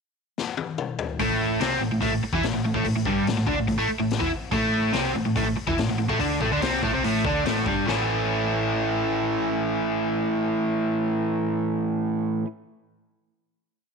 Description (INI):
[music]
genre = garage rock duo or trio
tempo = 144 BPM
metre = 4/4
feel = straight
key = A mixolydian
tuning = A4 = 440 Hz
[part]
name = raw garage drum kit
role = drums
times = 0.4-8.0 s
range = hi-hat, kick drum, snare drum, toms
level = -30 LUFS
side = left 5 dB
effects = none
[part]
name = overdriven electric guitar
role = riff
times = 1.2-12.5 s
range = G2 to E4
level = -23 LUFS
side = equal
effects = none
[part]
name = hollow-body short-scale picked electric bass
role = bass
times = 1.2-12.4 s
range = G1 to E2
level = -31 LUFS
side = right 1 dB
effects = overdrive
[sound]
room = light reverb, small room ambience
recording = 1960s-style stereo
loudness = -22 LUFS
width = side -5 dB against mid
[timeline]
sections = 0.0-1.2 pickup bar; 1.2-7.9 riff; 7.9-11.2 final chord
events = drum fill 0.4-1.2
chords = 0.0 N.C.; 1.2 A5; 7.9 A